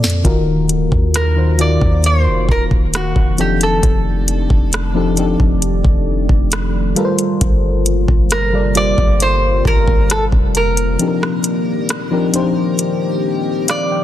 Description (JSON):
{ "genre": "contemporary R&B", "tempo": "67 BPM", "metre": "4/4", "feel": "straight", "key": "unclear", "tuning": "A4 = 440 Hz", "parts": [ { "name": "mellow FM electric piano", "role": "accompaniment", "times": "0.0-14.0 s", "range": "Bb2 to G5", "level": "-19 LUFS", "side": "left 3 dB", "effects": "chorus" }, { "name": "deep dark ambient pad", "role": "sustained chords", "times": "0.0-14.0 s", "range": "C3 to F5", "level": "-24 LUFS", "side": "equal", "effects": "chorus, built-in reverb" }, { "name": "warm 808-style bass", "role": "bass", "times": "0.0-11.0 s", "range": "Eb1 to F2", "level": "-17 LUFS", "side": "equal", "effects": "none" }, { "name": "smooth R&B drum kit", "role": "drums", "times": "0.0-13.9 s", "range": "hi-hat, kick drum, rim click, snare drum", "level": "-16 LUFS", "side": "equal", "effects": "none" }, { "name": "metal-body resonator slide guitar", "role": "melody", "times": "1.2-14.0 s", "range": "Gb4 to D5", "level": "-20 LUFS", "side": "right 1 dB", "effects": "tape echo" } ], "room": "light reverb", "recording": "dense, heavily limited modern master, lossy compression artefacts", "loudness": "-13 LUFS", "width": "side -12 dB against mid", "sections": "0.2-14.0 A section", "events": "drum fill 0.0; break 11.0-14.0; FM electric piano fill 13.2-14.0", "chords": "0.2 Ebmadd9; 3.4 F13; 7.0 Gm11; 11.0 F13sus4", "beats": "| 0.25 1.15 2.04 2.94 | 3.83 4.73 5.62 6.52 | 7.41 8.31 9.21 10.10 | 11.00 11.89 12.79 13.68" }